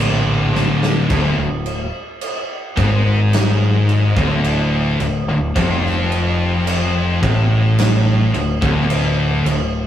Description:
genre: stoner and doom metal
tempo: 54 BPM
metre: 4/4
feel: straight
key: unclear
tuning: A4 = 440 Hz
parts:
  - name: heavy high-gain guitar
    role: riff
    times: 0.0-9.9 s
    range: D2 to D3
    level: -23 LUFS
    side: right 1 dB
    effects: distortion
  - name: thick fuzz guitar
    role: riff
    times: 0.0-9.9 s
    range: D2 to D3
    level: -17 LUFS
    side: left 1 dB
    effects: distortion
  - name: thick fuzz guitar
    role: riff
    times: 0.0-1.1 s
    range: D2 to D3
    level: -26 LUFS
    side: right 3 dB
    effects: none
  - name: growling fingered electric bass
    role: bass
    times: 0.0-9.9 s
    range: D1 to Bb1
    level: -22 LUFS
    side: equal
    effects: overdrive, tube saturation
  - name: big rock drum kit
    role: drums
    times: 0.6-9.7 s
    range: crash cymbal, kick drum, snare drum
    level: -22 LUFS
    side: right 1 dB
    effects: none
room: moderate stone room reverb, RT60 1.2 s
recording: rough rehearsal-room recording, tube saturation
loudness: -14 LUFS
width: side -11 dB against mid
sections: 0.0-1.1 A section; 1.1-9.9 B section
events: drum fill 0.5-1.1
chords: 0.0 D5; 1.1 Dm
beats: | 1.10 2.21 3.33 4.44 | 5.55 6.67 7.78 8.90

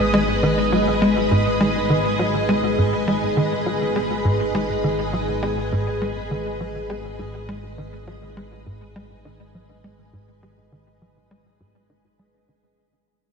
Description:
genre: ambient, sequencer-driven space music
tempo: 102 BPM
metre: 4/4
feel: straight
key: G# minor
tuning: A4 = 441 Hz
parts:
  - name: string machine, full ensemble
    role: sustained chords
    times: 0.0-12.8 s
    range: G#3 to D#5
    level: -22 LUFS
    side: equal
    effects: ensemble chorus
  - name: analog drone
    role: bass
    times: 0.0-12.8 s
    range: G#1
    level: -33 LUFS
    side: equal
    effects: chorus
  - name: thumb-piano-like synth pluck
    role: arpeggios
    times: 0.1-12.6 s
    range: D#3 to D#4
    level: -31 LUFS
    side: left 2 dB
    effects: none
  - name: tight sequencer bass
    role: riff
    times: 0.1-12.7 s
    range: G#2 to G#3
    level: -23 LUFS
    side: equal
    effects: lush chorus, tape echo
room: wet cathedral reverb, RT60 5.0 s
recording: in a vast, echoing space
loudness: -19 LUFS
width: side -5 dB against mid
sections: 0.0-12.8 A section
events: fade-out 0.0-12.8; filter sweep on analog synth bass 0.0-12.8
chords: 0.0 G#m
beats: 0.43 | 1.02 1.61 2.19 2.78 | 3.37 3.96 4.55 5.14 | 5.72 6.31 6.90 7.49 | 8.08 8.67 9.25 9.84 | 10.43 11.02 11.61 12.20

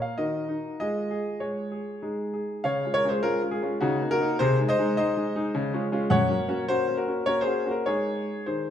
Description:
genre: classical-period piano sonatina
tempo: 96-106 BPM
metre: 3/4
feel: rubato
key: Db major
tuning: A4 = 439 Hz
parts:
  - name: warm grand piano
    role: solo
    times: 0.0-8.7 s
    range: Gb2 to Gb5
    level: -24 LUFS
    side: left 1 dB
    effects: none
room: wet recital hall reverb, RT60 1.7 s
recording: none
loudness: -24 LUFS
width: side -9 dB against mid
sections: 0.0-2.6 A section; 2.6-8.7 B section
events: none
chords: 0.2 Ebm; 0.8 Db/Ab; 2.0 Ab5; 2.6 Db; 3.8 Ebm7/Db; 4.4 Ab/C; 5.5 Db; 6.1 Gb; 7.9 Ab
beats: 0.19 | 0.80 1.42 2.04 | 2.65 3.24 3.82 | 4.40 4.97 5.54 | 6.11 6.69 7.27 | 7.87 8.47

